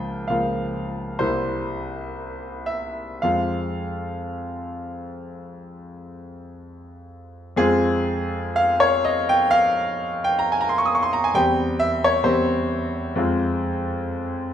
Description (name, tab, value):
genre	classical, romantic character piece for solo piano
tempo	52-67 BPM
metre	4/4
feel	rubato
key	F minor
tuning	A4 = 440 Hz
part	clear concert grand piano	solo	0.0-14.5 s	C2 to Eb6	-21 LUFS	equal	none
room	wet recital hall reverb, RT60 1.6 s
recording	minimal, uncompressed stereo recording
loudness	-20 LUFS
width	side -9 dB against mid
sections	0.0-7.6 A section; 7.6-14.5 B section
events	none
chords	0.0 Bbm/Db; 1.2 C7; 3.2 Fm; 11.3 C/E; 13.2 Fm